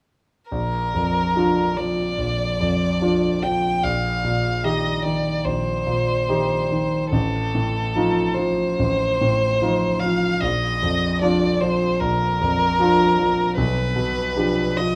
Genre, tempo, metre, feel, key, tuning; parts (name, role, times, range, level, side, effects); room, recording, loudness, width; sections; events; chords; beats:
classical, romantic duo for violin and grand piano; 74 BPM; 4/4; uneven beats, rubato; Bb major; A4 = 444 Hz
warm violin; melody; 0.5-15.0 s; A4 to G5; -25 LUFS; equal
clear grand piano; accompaniment; 0.5-15.0 s; A1 to G4; -23 LUFS; equal
moderate recital hall reverb, RT60 1.8 s; close, detailed microphones; -21 LUFS; mono
0.5-15.0 A section
0.5 Bb; 3.8 Cm7/Bb; 7.1 F7/A; 10.4 Bb; 13.6 G7/B
| 0.51 1.35 2.18 3.01 | 3.83 4.64 5.45 6.29 | 7.12 7.94 8.77 9.61 | 10.42 11.21 12.00 12.79 | 13.57 14.36